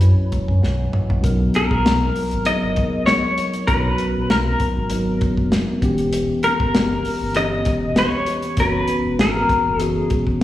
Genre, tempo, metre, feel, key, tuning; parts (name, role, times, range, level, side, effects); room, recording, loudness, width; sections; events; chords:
lush 1970s-style soul; 98 BPM; 4/4; swing 54% on 16ths; B major; A4 = 440 Hz
clean electric guitar; melody; 0.0-10.1 s; A#4 to D#5; -21 LUFS; left 1 dB; tremolo, slapback echo
mellow tine electric piano; accompaniment; 0.0-10.4 s; E3 to A#5; -22 LUFS; left 1 dB; phaser
sub bass with octave; bass; 0.0-10.4 s; E1 to F#2; -22 LUFS; equal
warm soul drum kit; drums; 0.0-10.4 s; hi-hat, kick drum, snare drum, toms; -22 LUFS; equal
light reverb, small room ambience; live gig heard through the venue's PA, recital hall reverb; -17 LUFS; side -13 dB against mid
0.0-1.2 A section; 1.2-10.4 B section
tine electric piano fill 0.0-1.2; drum fill 0.6-1.2
0.0 F#7sus4; 1.2 Bmaj7; 5.8 Em6; 8.6 F#7sus4